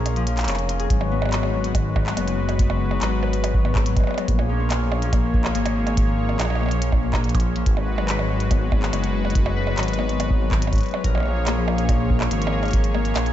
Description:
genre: IDM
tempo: 142 BPM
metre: 4/4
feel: straight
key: G# dorian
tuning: A4 = 440 Hz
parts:
  - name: warm analog pad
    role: sustained chords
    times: 0.0-13.3 s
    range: G#3 to C#5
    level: -28 LUFS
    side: equal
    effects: chorus
  - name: Celtic harp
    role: arpeggios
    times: 0.0-13.3 s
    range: E#3 to B4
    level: -27 LUFS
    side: left 9 dB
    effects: tape echo
  - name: dark detuned saw bass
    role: bass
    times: 0.0-13.3 s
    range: E#1 to A#1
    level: -24 LUFS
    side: equal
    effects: none
  - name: bubbling stepped-filter texture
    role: texture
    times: 0.0-0.9 s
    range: A#5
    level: -42 LUFS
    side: left 2 dB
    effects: none
  - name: glitchy drum kit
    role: drums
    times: 0.1-13.3 s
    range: handclaps, hi-hat, percussion blips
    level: -29 LUFS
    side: right 3 dB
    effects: small room ambience
  - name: electronic kick drum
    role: drums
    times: 0.9-12.8 s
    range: none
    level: -21 LUFS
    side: equal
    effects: small room ambience
room: digital ambience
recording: dark, warm production, nothing above 7.9 kHz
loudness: -19 LUFS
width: side -12 dB against mid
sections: 0.9-13.3 A section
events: break 0.1-0.9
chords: 0.0 A#m7; 0.9 G#m7; 4.3 A#m7; 7.7 G#m7; 11.0 A#m7

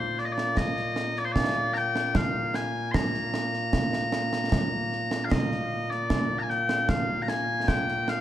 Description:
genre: scottish traditional, Scottish pipe music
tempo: 76 BPM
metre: 3/4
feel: straight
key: Bb mixolydian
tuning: A4 = 436 Hz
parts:
  - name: loud bright bagpipes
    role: melody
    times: 0.0-8.2 s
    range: Bb2 to C6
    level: -27 LUFS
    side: left 1 dB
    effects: none
  - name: concert snare drum and concert bass drum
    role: drums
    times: 0.2-8.2 s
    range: none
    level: -29 LUFS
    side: right 2 dB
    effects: none
room: moderate recital hall reverb, RT60 1.7 s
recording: dark, warm production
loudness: -24 LUFS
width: side -12 dB against mid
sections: 0.0-5.3 A section; 5.3-8.2 A section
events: none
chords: none

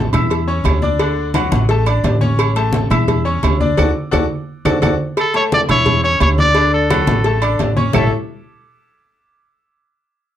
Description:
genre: latin, salsa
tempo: 173 BPM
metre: 4/4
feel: straight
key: A major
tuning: A4 = 441 Hz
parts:
  - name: bright grand piano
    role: accompaniment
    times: 0.0-8.1 s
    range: D3 to E6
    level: -20 LUFS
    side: left 4 dB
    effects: none
  - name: upright bass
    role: bass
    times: 0.0-8.1 s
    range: A1 to E2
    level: -18 LUFS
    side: right 1 dB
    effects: none
  - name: agogo bells and timbales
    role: percussion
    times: 0.1-8.0 s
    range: none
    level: -23 LUFS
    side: right 7 dB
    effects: none
  - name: claves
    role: percussion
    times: 0.1-8.0 s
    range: none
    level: -28 LUFS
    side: right 3 dB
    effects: none
  - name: congas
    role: percussion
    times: 0.1-8.0 s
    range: none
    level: -20 LUFS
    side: left 1 dB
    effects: none
  - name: cowbell and bongos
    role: percussion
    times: 0.1-8.0 s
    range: none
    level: -24 LUFS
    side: left 3 dB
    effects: none
  - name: clear trumpet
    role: melody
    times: 5.2-8.1 s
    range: A4 to D5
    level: -16 LUFS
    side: equal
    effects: none
room: light reverb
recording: dark, warm production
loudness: -13 LUFS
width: side -11 dB against mid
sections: 0.0-5.2 A section; 5.2-7.9 B section; 7.9-9.3 C section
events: band accent 3.8-5.2; drum fill 4.3-5.2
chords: 0.0 A (rootless); 1.0 D; 2.4 A; 3.8 D; 5.2 A; 6.6 D; 7.9 A5

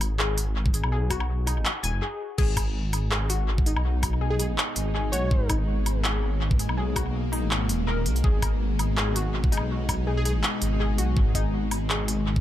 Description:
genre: half-time drum and bass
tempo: 164 BPM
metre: 4/4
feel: swing 54% on 16ths, half-time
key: G# minor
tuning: A4 = 440 Hz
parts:
  - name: dark detuned saw bass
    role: bass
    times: 0.0-12.4 s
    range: D#1 to B1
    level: -26 LUFS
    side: equal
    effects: none
  - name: drum and bass drum kit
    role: drums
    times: 0.0-12.2 s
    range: crash cymbal, handclaps, hi-hat, woodblock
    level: -30 LUFS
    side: equal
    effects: tape echo
  - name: warbly dusty pluck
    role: arpeggios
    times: 0.2-12.1 s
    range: D#4 to G#5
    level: -34 LUFS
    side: left 4 dB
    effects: chorus, dub echo
  - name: electronic kick drum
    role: drums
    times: 0.7-12.4 s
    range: none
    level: -24 LUFS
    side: equal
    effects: none
  - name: bowed-like drone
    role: sustained chords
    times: 3.3-12.4 s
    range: B2 to F#4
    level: -32 LUFS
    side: left 1 dB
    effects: built-in reverb, sidechain pumping
  - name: plucky unison lead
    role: melody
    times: 4.3-5.5, 10.2-10.3 s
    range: G#4 to C#5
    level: -36 LUFS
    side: equal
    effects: cassette tape, dub echo
room: light reverb, digital ambience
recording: echo-heavy mix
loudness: -23 LUFS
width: side -12 dB against mid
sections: 0.0-12.4 A section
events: break 1.7-2.4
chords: 0.0 G#m

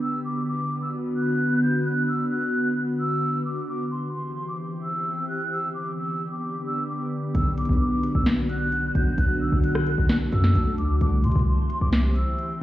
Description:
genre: hip hop, trap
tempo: 131 BPM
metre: 4/4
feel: half-time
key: B phrygian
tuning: A4 = 440 Hz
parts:
  - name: mellow hollow concert flute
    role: melody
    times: 0.0-12.6 s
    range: C6 to G6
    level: -30 LUFS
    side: right 1 dB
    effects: low-pass filter, digital delay
  - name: glassy FM pad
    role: sustained chords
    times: 0.0-12.6 s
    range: D3 to G4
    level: -26 LUFS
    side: equal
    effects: ensemble chorus, built-in reverb
  - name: hard-hitting 808-style bass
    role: bass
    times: 7.3-12.3 s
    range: B1 to C3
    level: -22 LUFS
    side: equal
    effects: none
  - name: trap drum kit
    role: drums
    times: 7.3-12.5 s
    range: hi-hat, rim click, snare drum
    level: -25 LUFS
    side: equal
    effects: none
room: light reverb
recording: heard muffled through a wall, stone room reverb, EQ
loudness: -22 LUFS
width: side -14 dB against mid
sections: 0.0-12.6 A section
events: none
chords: 0.0 Bm; 3.7 C; 5.5 G; 7.3 Bm; 11.0 C

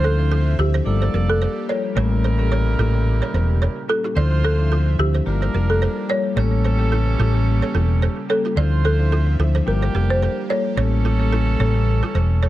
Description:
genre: afrobeats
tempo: 109 BPM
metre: 4/4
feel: swing 55% on 16ths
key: unclear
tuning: A4 = 440 Hz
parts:
  - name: folk marimba with medium mallets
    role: melody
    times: 0.0-12.4 s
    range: G4 to C#5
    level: -24 LUFS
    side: equal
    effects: plate reverb, tape echo
  - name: warm horn section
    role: second line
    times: 0.0-12.5 s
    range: D3 to D5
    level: -29 LUFS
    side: right 4 dB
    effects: plate reverb
  - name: marimba with medium mallets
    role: accompaniment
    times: 0.0-11.8 s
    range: F3 to C5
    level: -26 LUFS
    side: left 6 dB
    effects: plate reverb
  - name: airy breathy pad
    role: sustained chords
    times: 0.1-12.5 s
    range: Bb2 to E5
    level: -31 LUFS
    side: right 2 dB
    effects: chorus, plate reverb
  - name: balafon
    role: riff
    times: 0.0-12.5 s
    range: E4 to D5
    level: -30 LUFS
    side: right 6 dB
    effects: tape echo
  - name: hollow-body short-scale fingered electric bass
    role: bass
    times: 0.0-12.5 s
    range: E1 to D2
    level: -18 LUFS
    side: equal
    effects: none
room: light reverb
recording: none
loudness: -17 LUFS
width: side -15 dB against mid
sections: 0.0-12.5 A section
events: none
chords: 0.0 Dm9; 0.9 Gm9; 2.0 A7b9; 4.2 Dm9; 5.3 Gm9; 6.4 A7b9; 8.6 Dm9; 9.7 Gm9; 10.8 A7b9

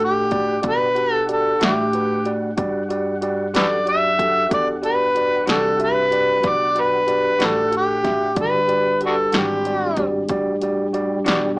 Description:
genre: slow blues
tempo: 62 BPM (dotted quarters)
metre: 12/8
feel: straight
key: E minor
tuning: A4 = 444 Hz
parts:
  - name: overdriven harmonica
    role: melody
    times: 0.0-10.0 s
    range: D4 to E5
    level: -18 LUFS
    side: equal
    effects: none
  - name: overdriven tine electric piano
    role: accompaniment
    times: 0.0-11.6 s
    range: F#4 to E5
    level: -24 LUFS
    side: right 1 dB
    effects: none
  - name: mellow tonewheel organ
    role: sustained chords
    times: 0.0-11.6 s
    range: G3 to F#5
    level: -28 LUFS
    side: equal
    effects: chorus vibrato, slow rotary speaker
  - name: upright bass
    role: bass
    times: 0.0-11.6 s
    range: G1 to B2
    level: -30 LUFS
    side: equal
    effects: none
  - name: techno drum kit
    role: drums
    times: 0.3-11.4 s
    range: hi-hat, kick drum, snare drum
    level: -24 LUFS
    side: equal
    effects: overdrive
  - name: semi-hollow electric guitar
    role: accompaniment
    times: 1.6-11.5 s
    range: E3 to F#4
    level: -25 LUFS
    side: left 1 dB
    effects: tremolo
room: moderate studio ambience, RT60 0.4 s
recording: small speaker sound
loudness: -17 LUFS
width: side -25 dB against mid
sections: 0.0-11.6 A section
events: tine electric piano fill 11.3-11.6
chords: 0.0 Em9

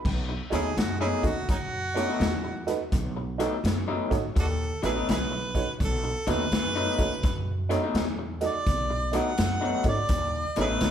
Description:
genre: electric blues shuffle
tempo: 84 BPM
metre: 4/4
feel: swing 65% on 8ths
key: B mixolydian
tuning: A4 = 441 Hz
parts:
  - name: honky-tonk upright piano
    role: accompaniment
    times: 0.0-10.7 s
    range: D#4 to D#5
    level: -32 LUFS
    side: right 6 dB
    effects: none
  - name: upright bass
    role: bass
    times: 0.1-10.9 s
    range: A1 to G#2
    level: -31 LUFS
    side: equal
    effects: none
  - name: swinging big-band drum kit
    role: drums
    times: 0.1-10.9 s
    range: crash cymbal, hi-hat, kick drum, snare drum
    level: -30 LUFS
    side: left 1 dB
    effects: none
  - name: electric guitar through a small old amp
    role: riff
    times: 0.3-10.9 s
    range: B2 to D#4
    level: -31 LUFS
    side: left 4 dB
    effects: none
  - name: warm harmonica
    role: melody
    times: 0.5-10.9 s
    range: C#4 to F#5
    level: -30 LUFS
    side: right 2 dB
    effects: none
room: moderate large studio reverb, RT60 1.3 s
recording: band playing live in one room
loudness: -24 LUFS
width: side -9 dB against mid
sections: 0.0-10.9 A section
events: harmonica solo 0.0-10.9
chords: 0.0 B7

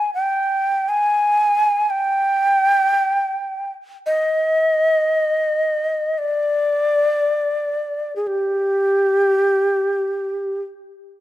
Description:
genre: japanese traditional, Japanese chamber music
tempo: free time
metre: none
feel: none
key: unclear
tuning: A4 = 440 Hz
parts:
  - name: mellow shakuhachi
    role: solo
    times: 0.0-10.6 s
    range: G4 to Ab5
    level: -17 LUFS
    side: equal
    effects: none
room: light reverb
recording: close, detailed microphones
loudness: -17 LUFS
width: side -14 dB against mid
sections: 0.0-11.2 A section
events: none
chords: none

